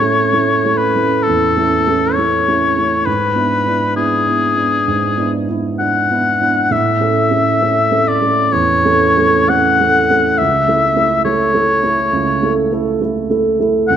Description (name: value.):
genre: classical, romantic duo for oboe and grand piano.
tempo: 67 BPM.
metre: 4/4.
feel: uneven beats, rubato.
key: A major.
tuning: A4 = 440 Hz.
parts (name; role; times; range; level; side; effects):
clear oboe; melody; 0.0-14.0 s; G#4 to F#5; -14 LUFS; left 3 dB; none.
dark baby grand piano; accompaniment; 0.0-14.0 s; C#2 to A4; -16 LUFS; right 4 dB; none.
room: wet recital hall reverb, RT60 1.4 s.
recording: none.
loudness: -12 LUFS.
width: side -9 dB against mid.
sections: 0.0-14.0 A section.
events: none.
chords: 0.0 A; 3.1 E7/G#; 6.7 A; 10.4 A/C#.